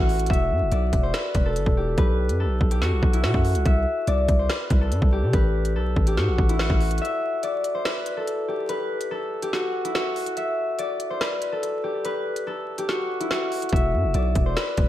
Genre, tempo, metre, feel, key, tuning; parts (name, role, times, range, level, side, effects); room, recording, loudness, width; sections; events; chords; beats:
hip hop, drill; 143 BPM; 4/4; half-time; E minor; A4 = 439 Hz
concert harp; melody; 0.0-14.9 s; E4 to E5; -25 LUFS; left 1 dB; low-pass filter, tape echo
distorted 808-style bass; bass; 0.0-7.0, 13.7-14.9 s; E1 to C3; -23 LUFS; equal; distortion
drill drum kit; drums; 0.1-14.9 s; hi-hat, kick drum, snare drum; -24 LUFS; equal
moderate plate reverb, RT60 1.6 s; dreamy mix soaked in reverb, vinyl crackle; -21 LUFS; side -13 dB against mid
0.0-14.9 A section
break 7.0-13.7
0.3 Em; 2.0 B5; 3.7 C; 5.3 Gmaj13/A; 7.0 N.C.; 13.7 E5
| 0.30 0.72 1.14 1.56 | 1.98 2.40 2.82 3.24 | 3.66 4.08 4.50 4.92 | 5.33 5.75 6.17 6.59 | 7.01 7.43 7.85 8.27 | 8.69 9.11 9.53 9.95 | 10.37 10.79 11.21 11.63 | 12.05 12.47 12.89 13.31 | 13.73 14.15 14.57